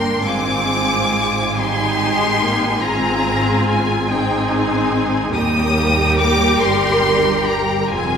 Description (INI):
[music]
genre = classical, slow romantic movement for string orchestra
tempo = 47 BPM (dotted quarters)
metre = 12/8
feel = rubato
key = unclear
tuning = A4 = 441 Hz
[part]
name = rich symphonic violin section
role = melody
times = 0.0-8.2 s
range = G5 to Eb6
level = -20 LUFS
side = left 2 dB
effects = none
[part]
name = rich symphonic violin section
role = second line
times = 0.0-8.2 s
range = F4 to Ab5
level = -21 LUFS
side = left 1 dB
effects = none
[part]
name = rich studio viola section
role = accompaniment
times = 0.0-8.2 s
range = G3 to G4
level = -20 LUFS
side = right 1 dB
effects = none
[part]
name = rich symphonic cello section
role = bass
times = 0.0-8.2 s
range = Eb2 to Ab2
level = -24 LUFS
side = right 1 dB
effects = none
[part]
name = rich symphonic double bass section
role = bass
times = 0.0-8.2 s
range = F1 to Eb2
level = -25 LUFS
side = right 2 dB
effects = none
[sound]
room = wet church reverb, RT60 3.4 s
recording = recorded in a church or concert hall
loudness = -14 LUFS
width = side -7 dB against mid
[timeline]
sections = 0.0-8.2 A section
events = none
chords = 0.2 Abmaj7; 5.3 Eb